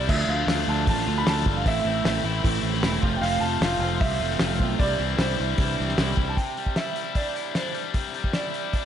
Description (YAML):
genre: indie rock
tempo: 153 BPM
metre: 4/4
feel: straight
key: C major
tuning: A4 = 440 Hz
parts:
  - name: dark upright piano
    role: melody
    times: 0.0-8.8 s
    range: C5 to B5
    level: -30 LUFS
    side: right 2 dB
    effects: slapback echo
  - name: overdriven electric guitar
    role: riff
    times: 0.0-8.8 s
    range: F2 to F4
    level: -29 LUFS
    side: left 9 dB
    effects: none
  - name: growling fingered electric bass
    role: bass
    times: 0.0-6.3 s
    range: E1 to D2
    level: -28 LUFS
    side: equal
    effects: overdrive
  - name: electric guitar through a small old amp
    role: riff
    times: 0.1-6.4 s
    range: F2 to F4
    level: -30 LUFS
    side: right 7 dB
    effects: analog chorus, slapback echo
  - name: cloth-damped thuddy drum kit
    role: drums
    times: 0.1-8.8 s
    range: crash cymbal, hi-hat, kick drum, snare drum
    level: -27 LUFS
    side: equal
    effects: none
room: moderate lush hall reverb, RT60 1.8 s, small room reverb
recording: big arena sound, nothing above 11.0 kHz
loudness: -22 LUFS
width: side -9 dB against mid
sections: 0.0-6.4 A section; 6.4-8.8 B section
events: none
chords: 0.1 Dm; 1.7 Am; 3.0 F; 4.8 Cadd9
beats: | 0.09 0.48 0.88 1.27 | 1.66 2.05 2.45 2.84 | 3.23 3.62 4.01 4.41 | 4.80 5.19 5.58 5.98 | 6.37 6.76 7.16 7.55 | 7.95 8.35 8.74